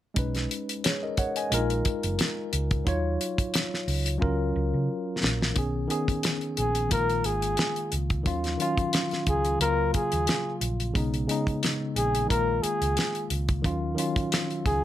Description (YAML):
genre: lush 1970s-style soul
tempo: 89 BPM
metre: 4/4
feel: swing 54% on 16ths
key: unclear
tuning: A4 = 440 Hz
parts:
  - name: tine electric piano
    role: accompaniment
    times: 0.1-14.8 s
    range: C#3 to G#5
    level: -29 LUFS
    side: left 1 dB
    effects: medium stereo tremolo
  - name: hollow-body short-scale fingered electric bass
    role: bass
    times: 0.2-14.8 s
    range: F#1 to C#3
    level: -29 LUFS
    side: equal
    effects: none
  - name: damped 70s drum kit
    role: drums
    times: 0.2-14.8 s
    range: hi-hat, kick drum, snare drum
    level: -28 LUFS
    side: equal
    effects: none
  - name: breathy flugelhorn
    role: melody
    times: 6.6-14.8 s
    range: G#4 to A#4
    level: -27 LUFS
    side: left 1 dB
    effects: slapback echo
room: light reverb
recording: none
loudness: -24 LUFS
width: side -12 dB against mid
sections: 0.2-5.6 A section; 5.6-14.8 B section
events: drum fill 4.2-5.6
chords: 0.2 B69; 1.5 A#7sus4; 2.9 D#m9; 4.2 F#maj7/C#; 5.6 B69; 6.9 A#7sus4; 8.3 D#m9; 9.6 F#maj7/C#; 11.0 B69; 12.3 A#7sus4; 13.6 D#m9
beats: | 0.17 0.84 1.51 2.19 | 2.87 3.54 4.21 4.89 | 5.56 6.24 6.91 7.58 | 8.26 8.93 9.61 10.28 | 10.95 11.63 12.30 12.97 | 13.65 14.32